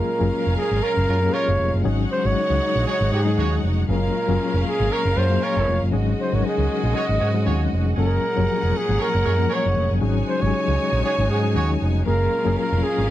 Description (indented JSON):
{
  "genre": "disco",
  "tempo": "117 BPM",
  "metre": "4/4",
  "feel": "swing 56% on 16ths",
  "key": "unclear",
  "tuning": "A4 = 440 Hz",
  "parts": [
    { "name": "breathy flugelhorn", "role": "melody", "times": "0.0-13.1 s", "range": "Ab4 to Eb5", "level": "-24 LUFS", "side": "right 1 dB", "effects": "none" },
    { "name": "clear studio string section", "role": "second line", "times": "0.0-13.1 s", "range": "Ab3 to Ab5", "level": "-30 LUFS", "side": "equal", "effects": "none" },
    { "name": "reed electric piano", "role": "accompaniment", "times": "0.0-13.1 s", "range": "F3 to Bb4", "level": "-26 LUFS", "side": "left 7 dB", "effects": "fast tremolo" },
    { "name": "overdriven tonewheel organ", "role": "sustained chords", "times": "0.0-13.1 s", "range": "Bb2 to Ab4", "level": "-32 LUFS", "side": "right 2 dB", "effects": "chorus vibrato, slow rotary speaker" },
    { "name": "picked electric bass with an envelope filter", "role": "bass", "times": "0.2-13.1 s", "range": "F1 to Ab2", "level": "-21 LUFS", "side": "equal", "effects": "none" },
    { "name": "clear horn section", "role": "stabs", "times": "0.8-11.7 s", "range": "Db4 to Db5", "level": "-29 LUFS", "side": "right 5 dB", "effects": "none" }
  ],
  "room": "little or no reverb",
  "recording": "dry, close 1970s-style studio recording",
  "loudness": "-18 LUFS",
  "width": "side -13 dB against mid",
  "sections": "0.0-13.1 A section",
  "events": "none",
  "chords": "0.0 Gbmaj9; 1.8 Ab7sus4; 3.9 Gbmaj9; 5.9 Ab7sus4; 8.0 Gbmaj9; 10.0 Ab7sus4; 12.1 Gbmaj9",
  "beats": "0.31 0.82 1.33 | 1.84 2.35 2.86 3.38 | 3.88 4.40 4.91 5.42 | 5.93 6.44 6.95 7.46 | 7.97 8.48 8.99 9.51 | 10.02 10.53 11.04 11.55 | 12.06 12.57 13.09"
}